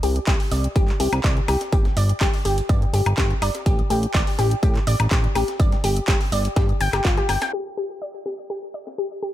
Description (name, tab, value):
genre	progressive house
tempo	124 BPM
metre	4/4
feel	straight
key	unclear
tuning	A4 = 443 Hz
part	analog pluck	arpeggios	0.0-9.3 s	F4 to G5	-25 LUFS	left 2 dB	chorus, sidechain pumping, ping-pong delay
part	fat analog bass	bass	0.0-7.4 s	G1 to A2	-22 LUFS	equal	sidechain pumping
part	big-room dance drum kit	drums	0.0-9.3 s	handclaps, hi-hat, woodblock	-28 LUFS	left 1 dB	studio reverb
part	breakbeat sampler-style drum kit	drums	0.0-9.3 s	hi-hat, snare drum	-35 LUFS	equal	none
part	electronic kick drum	drums	0.3-7.1 s	none	-20 LUFS	equal	studio reverb
room	little or no reverb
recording	low-pass filter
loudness	-18 LUFS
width	side -13 dB against mid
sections	0.0-7.5 A section; 7.5-9.3 B section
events	filter sweep on synth pluck 7.5-9.3; filter sweep 7.5-9.3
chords	0.0 C5; 1.7 G5; 3.7 A7sus4; 5.6 G5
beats	0.27 0.76 1.24 | 1.73 2.21 2.69 3.18 | 3.66 4.14 4.63 5.11 | 5.60 6.08 6.56 7.05 | 7.53 8.02 8.50 8.98